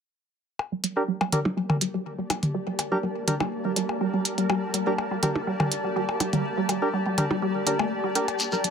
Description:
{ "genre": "minimal techno", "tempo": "123 BPM", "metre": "4/4", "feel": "straight", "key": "G minor", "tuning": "A4 = 436 Hz", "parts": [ { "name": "electronic percussion blips and toms", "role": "percussion", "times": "0.6-8.4 s", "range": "none", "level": "-28 LUFS", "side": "left 1 dB", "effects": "overdrive, digital delay" }, { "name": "bubbling stepped-filter texture", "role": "texture", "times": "0.6-8.7 s", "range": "Bb3 to D5", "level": "-36 LUFS", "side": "equal", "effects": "chorus, built-in reverb" }, { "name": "granular cloud pad", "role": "texture", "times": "1.8-8.7 s", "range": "G4 to A5", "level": "-32 LUFS", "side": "left 1 dB", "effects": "built-in reverb" }, { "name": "resonant blip pluck", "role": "riff", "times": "0.7-8.7 s", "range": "D3 to G4", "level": "-28 LUFS", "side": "right 1 dB", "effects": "phaser, dub echo" }, { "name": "electronic hi-hat", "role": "drums", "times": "0.8-8.7 s", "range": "none", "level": "-28 LUFS", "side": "right 1 dB", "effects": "high-pass filter on hats, high-pass filter on room" }, { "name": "percussive organ stab", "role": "stabs", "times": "1.0-8.3 s", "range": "D4 to Bb4", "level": "-29 LUFS", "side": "right 1 dB", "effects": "chorus, vintage 12-bit sampler grit, digital delay" }, { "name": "shekere", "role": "percussion", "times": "8.4-8.6 s", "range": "none", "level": "-28 LUFS", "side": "left 4 dB", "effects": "none" } ], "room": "moderate small room reverb, RT60 0.5 s", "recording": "none", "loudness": "-24 LUFS", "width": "side -7 dB against mid", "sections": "0.6-8.4 A section", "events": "filter sweep on synth arpeggio sound 0.6-8.4", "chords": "0.6 Gm" }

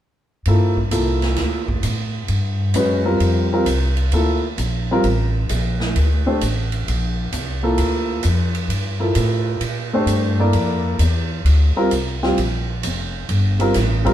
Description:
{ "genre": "modal jazz", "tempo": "131 BPM", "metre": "4/4", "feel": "swing 68% on 8ths", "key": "G dorian", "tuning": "A4 = 440 Hz", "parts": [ { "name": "warm concert grand piano", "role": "accompaniment", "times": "0.5-14.1 s", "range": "F3 to D5", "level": "-20 LUFS", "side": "equal", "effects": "none" }, { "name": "upright bass", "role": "bass", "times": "0.5-14.1 s", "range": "F1 to Bb2", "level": "-19 LUFS", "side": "equal", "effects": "none" }, { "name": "swinging big-band drum kit", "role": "drums", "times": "0.5-14.1 s", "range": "hi-hat, kick drum, ride cymbal, snare drum", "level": "-27 LUFS", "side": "right 3 dB", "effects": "none" } ], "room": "moderate stone room reverb, RT60 1.3 s", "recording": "band playing live in one room", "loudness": "-17 LUFS", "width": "side -11 dB against mid", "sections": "0.5-14.1 A section", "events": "none", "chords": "0.5 Gm9" }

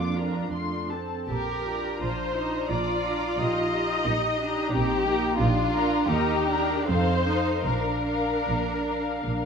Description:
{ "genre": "classical, slow romantic movement for string orchestra", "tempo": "73-93 BPM", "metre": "3/4", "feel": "rubato", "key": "Bb major", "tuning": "A4 = 440 Hz", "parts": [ { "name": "muted studio violin section", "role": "melody", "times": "0.0-9.5 s", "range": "F5 to D6", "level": "-35 LUFS", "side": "left 4 dB", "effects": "none" }, { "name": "muted studio violin section", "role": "second line", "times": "0.0-9.5 s", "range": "F4 to Eb5", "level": "-28 LUFS", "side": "left 3 dB", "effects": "none" }, { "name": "muted studio viola section", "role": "accompaniment", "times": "0.0-9.5 s", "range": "A3 to Bb4", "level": "-32 LUFS", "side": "left 2 dB", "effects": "none" }, { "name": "muted studio cello section", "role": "bass", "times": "0.0-9.5 s", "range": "Bb3 to G4", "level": "-30 LUFS", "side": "right 3 dB", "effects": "none" }, { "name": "muted studio double bass section", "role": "bass", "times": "0.0-9.5 s", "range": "Bb1 to F2", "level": "-29 LUFS", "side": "right 2 dB", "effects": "none" } ], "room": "moderate scoring stage reverb, RT60 2.0 s", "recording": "none", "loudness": "-23 LUFS", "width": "side -6 dB against mid", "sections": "0.0-9.5 A section", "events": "none", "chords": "0.0 Bb/F; 0.5 F; 1.3 Bb; 3.4 Eb/Bb; 5.4 Bb; 6.1 Eb; 6.9 F7; 7.7 Bb" }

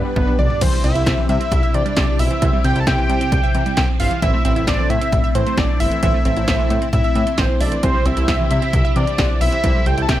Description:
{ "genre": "synth-pop", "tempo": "133 BPM", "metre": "4/4", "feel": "straight", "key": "C major", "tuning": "A4 = 441 Hz", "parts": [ { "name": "fat analog lead", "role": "melody", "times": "0.0-10.2 s", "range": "B4 to A5", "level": "-21 LUFS", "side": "equal", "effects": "chorus, phaser" }, { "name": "mellow synth brass", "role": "accompaniment", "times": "0.0-10.2 s", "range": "B3 to C5", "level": "-27 LUFS", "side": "left 1 dB", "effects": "chorus" }, { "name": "string machine, full ensemble", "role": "sustained chords", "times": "0.0-10.2 s", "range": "C3 to A4", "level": "-26 LUFS", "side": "equal", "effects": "phaser, ensemble chorus" }, { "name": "fat analog bass", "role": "bass", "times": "0.0-10.2 s", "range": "G1 to C3", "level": "-22 LUFS", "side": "equal", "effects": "none" }, { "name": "wide unison pluck", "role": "arpeggios", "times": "0.1-10.2 s", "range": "D3 to E5", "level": "-27 LUFS", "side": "right 2 dB", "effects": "digital delay" }, { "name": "punchy analog drum machine", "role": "drums", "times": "0.2-10.2 s", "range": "crash cymbal, hi-hat, kick drum, snare drum, toms", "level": "-18 LUFS", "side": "equal", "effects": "none" } ], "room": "little or no reverb", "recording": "none", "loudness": "-15 LUFS", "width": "side -13 dB against mid", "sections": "0.6-10.2 A section", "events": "drum fill 0.2-0.6", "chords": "0.0 G; 0.6 C; 4.2 Am; 7.8 C" }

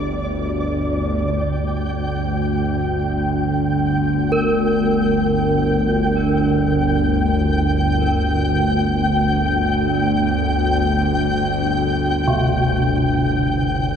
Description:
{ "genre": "dark ambient drone", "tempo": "free time", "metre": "none", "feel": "none", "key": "G minor", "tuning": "A4 = 436 Hz", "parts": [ { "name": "deep dark ambient pad", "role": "sustained chords", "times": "0.0-1.3 s", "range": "D4 to G5", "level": "-40 LUFS", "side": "left 2 dB", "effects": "none" }, { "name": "gamelan-type bronze metallophone", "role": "arpeggios", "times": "0.0-14.0 s", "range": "C3 to Bb4", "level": "-24 LUFS", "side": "equal", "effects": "analog delay" }, { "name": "bowed-like drone", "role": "drone", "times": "0.0-14.0 s", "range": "G1 to D2", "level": "-18 LUFS", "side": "equal", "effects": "built-in reverb" }, { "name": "flickering grainy texture", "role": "texture", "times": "0.0-14.0 s", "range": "D5 to G5", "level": "-23 LUFS", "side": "left 1 dB", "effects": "built-in reverb" } ], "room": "wet lush hall reverb, RT60 2.9 s", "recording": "dreamy mix soaked in reverb", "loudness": "-16 LUFS", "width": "side -7 dB against mid", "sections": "0.0-1.3 A section; 1.3-14.0 B section", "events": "none", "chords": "0.0 G5" }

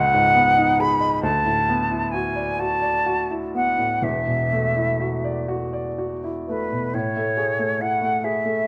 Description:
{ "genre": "classical, impressionist duo for flute and grand piano", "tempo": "40-47 BPM (dotted quarters)", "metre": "6/8", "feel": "rubato", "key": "A major", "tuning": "A4 = 440 Hz", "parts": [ { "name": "concert flute", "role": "melody", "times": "0.0-8.7 s", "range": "B4 to B5", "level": "-23 LUFS", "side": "equal", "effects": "none" }, { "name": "clear baby grand piano", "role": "accompaniment", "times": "0.0-8.7 s", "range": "E1 to D#5", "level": "-26 LUFS", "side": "equal", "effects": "none" } ], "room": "moderate recital hall reverb, RT60 1.4 s", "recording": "close, detailed microphones", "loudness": "-22 LUFS", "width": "mono", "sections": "0.0-6.9 A section; 6.9-8.7 B section", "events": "none", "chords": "0.0 C#9sus4; 1.2 D69; 4.0 E9sus4; 6.9 Amaj7" }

